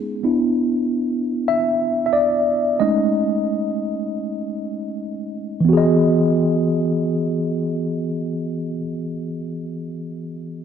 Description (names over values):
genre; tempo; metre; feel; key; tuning
R&B; 38-48 BPM (dotted quarters); 6/8; straight; E major; A4 = 441 Hz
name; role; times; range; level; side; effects
mellow tine electric piano; accompaniment; 0.0-10.6 s; E3 to E5; -19 LUFS; equal; medium stereo tremolo
room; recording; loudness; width
light reverb, small room reverb; none; -18 LUFS; side -8 dB against mid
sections
0.0-5.7 A section; 5.7-8.8 B section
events
tine electric piano solo 0.0-5.7; slowing down 0.2-5.7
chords
0.2 Bmadd11; 2.8 Amaj7#11/G#; 5.7 Emaj9